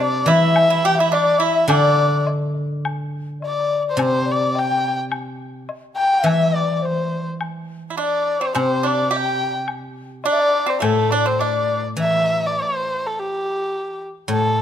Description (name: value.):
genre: chinese traditional, Chinese chamber ensemble.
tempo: 105 BPM.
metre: 2/4.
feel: rubato.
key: D shang mode.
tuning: A4 = 439 Hz.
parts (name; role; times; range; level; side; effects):
dark erhu; melody; 0.0-14.6 s; G4 to G5; -21 LUFS; right 1 dB; none.
low xiao; second line; 0.0-11.9 s; A4 to G5; -22 LUFS; left 7 dB; none.
pipa; second line; 0.0-2.2, 7.9-11.8 s; A3 to G4; -23 LUFS; right 7 dB; none.
guzheng; accompaniment; 0.0-14.6 s; A2 to E3; -22 LUFS; left 1 dB; none.
woodblock; percussion; 0.6-11.5 s; none; -29 LUFS; left 4 dB; none.
room: moderate recital hall reverb, RT60 1.8 s.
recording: close, detailed microphones.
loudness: -17 LUFS.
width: side -9 dB against mid.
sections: 0.0-2.9 A section; 2.9-12.0 B section; 12.0-14.6 C section.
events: none.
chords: none.